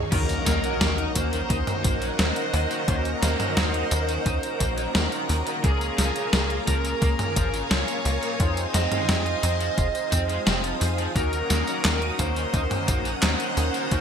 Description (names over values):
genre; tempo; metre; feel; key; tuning
synthwave; 87 BPM; 4/4; straight; Eb dorian; A4 = 440 Hz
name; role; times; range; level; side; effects
string machine, full ensemble; sustained chords; 0.0-14.0 s; Db4 to Eb6; -31 LUFS; right 1 dB; phaser, ensemble chorus, sidechain pumping
tight sequencer bass; bass; 0.0-14.0 s; F1 to F2; -26 LUFS; equal; tube saturation
swell and impact; sound effects; 0.0-2.9 s; none; -34 LUFS; equal; none
bluesy overdriven lead guitar; melody; 0.1-14.0 s; Ab4 to Eb5; -30 LUFS; right 4 dB; distortion, ping-pong delay
raw garage guitar; riff; 0.1-14.0 s; Bb2 to F4; -33 LUFS; left 2 dB; overdrive, wide subtle chorus, ping-pong delay
mellow synth brass; stabs; 0.1-14.0 s; Bb3 to C5; -31 LUFS; left 3 dB; chorus
electronic kick drum; drums; 0.1-14.0 s; none; -26 LUFS; equal; overdrive
gated 80s digital drum machine; drums; 0.1-14.0 s; crash cymbal, handclaps, hi-hat, snare drum, tambourine, toms; -27 LUFS; equal; gated reverb, gated reverb snare, overdrive
room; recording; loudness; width
light reverb; bright 1980s-style digital production; -22 LUFS; side -7 dB against mid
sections
0.1-14.0 A section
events
impact 0.1-2.9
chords
0.1 Ebm7; 5.6 Bbm7/Db; 8.4 Fm7; 11.2 Ebm7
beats
| 0.12 0.81 1.50 2.19 | 2.88 3.57 4.26 4.95 | 5.64 6.33 7.02 7.71 | 8.40 9.09 9.78 10.47 | 11.16 11.85 12.54 13.22 | 13.91